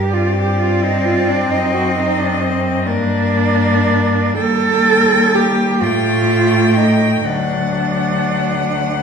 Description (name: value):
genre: classical, lyrical piece for cello ensemble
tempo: 38-45 BPM (dotted quarters)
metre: 6/8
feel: rubato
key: G minor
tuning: A4 = 442 Hz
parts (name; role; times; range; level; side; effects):
- bright cello; melody; 0.0-9.0 s; Bb4 to G5; -23 LUFS; left 6 dB; none
- rich cello; second line; 0.0-9.0 s; C4 to A4; -17 LUFS; right 4 dB; none
- clear cello; bass; 0.0-9.0 s; D2 to A2; -19 LUFS; equal; none
- rich cello; accompaniment; 0.2-9.0 s; F#3 to C4; -20 LUFS; left 3 dB; none
room: wet recital hall reverb, RT60 1.5 s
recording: recorded in a church or concert hall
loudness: -13 LUFS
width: side -6 dB against mid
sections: 0.0-9.0 A section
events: none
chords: 0.0 G5; 1.5 D7b9/F# (rootless); 2.9 Gm; 4.4 Eb; 5.8 F9/A; 7.2 D